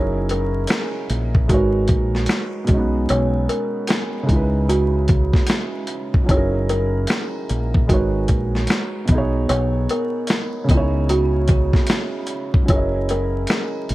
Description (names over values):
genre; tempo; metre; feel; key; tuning
lo-fi hip hop; 75 BPM; 4/4; swing 63% on 16ths; B major; A4 = 440 Hz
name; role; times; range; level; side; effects
kalimba; melody; 0.0-13.9 s; F#4 to C#5; -25 LUFS; right 2 dB; low-pass filter
felt-muted upright piano; accompaniment; 0.0-13.9 s; B2 to D#5; -24 LUFS; right 1 dB; low-pass filter
deep dub fingered electric bass; bass; 0.0-13.9 s; F#1 to C#2; -21 LUFS; equal; none
dusty soul sampler-style drum kit; drums; 0.3-13.9 s; hi-hat, kick drum, snare drum; -19 LUFS; equal; none
room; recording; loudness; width
light reverb; vinyl crackle; -17 LUFS; side -17 dB against mid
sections
0.0-13.9 A section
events
none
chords
0.0 F#13; 1.5 G#m11; 2.7 B69; 4.3 C#m9; 6.3 F#13; 7.9 G#m11; 9.1 B69; 10.7 C#m9; 12.7 F#13